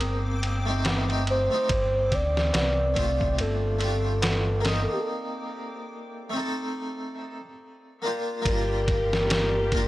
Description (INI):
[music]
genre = trip hop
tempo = 71 BPM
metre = 4/4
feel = swing 58% on 16ths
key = G minor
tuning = A4 = 439 Hz
[part]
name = harpsichord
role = accompaniment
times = 0.0-9.9 s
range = A3 to Bb4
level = -31 LUFS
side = equal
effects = tremolo, tape echo
[part]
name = fingered electric bass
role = bass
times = 0.0-9.9 s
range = G1 to D2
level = -27 LUFS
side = equal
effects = none
[part]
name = trip hop sampler-style drum kit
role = drums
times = 0.0-9.9 s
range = kick drum, ride cymbal, snare drum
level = -28 LUFS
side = equal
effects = none
[part]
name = backwards swelling texture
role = texture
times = 0.0-9.9 s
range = C4 to D6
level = -39 LUFS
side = equal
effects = built-in reverb
[part]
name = tabla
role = percussion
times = 0.9-4.4 s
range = none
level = -39 LUFS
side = right 2 dB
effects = none
[part]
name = pure breathy sine lead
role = melody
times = 1.3-9.9 s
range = G4 to D5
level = -28 LUFS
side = equal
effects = chorus, dub echo
[part]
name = rich symphonic string section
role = sustained chords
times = 8.4-9.9 s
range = G3 to G4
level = -33 LUFS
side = equal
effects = vintage 12-bit sampler grit
[sound]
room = little or no reverb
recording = dry, gritty hardware recording, cassette tape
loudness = -23 LUFS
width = side -16 dB against mid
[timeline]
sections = 0.0-8.5 A section; 8.5-9.9 B section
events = break 5.1-8.5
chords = 0.0 Am7b5/G; 1.7 G9sus4; 3.4 Ebmaj9#11/G; 5.1 Am7b5; 8.5 Gm7